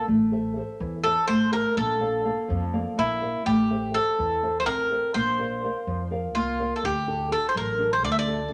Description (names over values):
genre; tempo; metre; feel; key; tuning
greek folk, Greek bouzouki band; 249 BPM (eighths); 7/8; straight; A phrygian; A4 = 441 Hz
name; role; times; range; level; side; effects
Greek bouzouki; melody; 0.0-8.5 s; E4 to E5; -27 LUFS; equal; none
nylon-string guitar; accompaniment; 0.0-8.5 s; D3 to F5; -30 LUFS; equal; none
upright bass; bass; 0.1-8.4 s; A1 to F2; -35 LUFS; equal; none
room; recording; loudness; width
wet studio reverb, RT60 0.9 s; none; -25 LUFS; mono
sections
0.0-3.5 A section; 3.5-8.5 B section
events
none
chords
0.1 Am; 1.8 Bb; 3.5 Am; 5.1 Bb; 6.8 D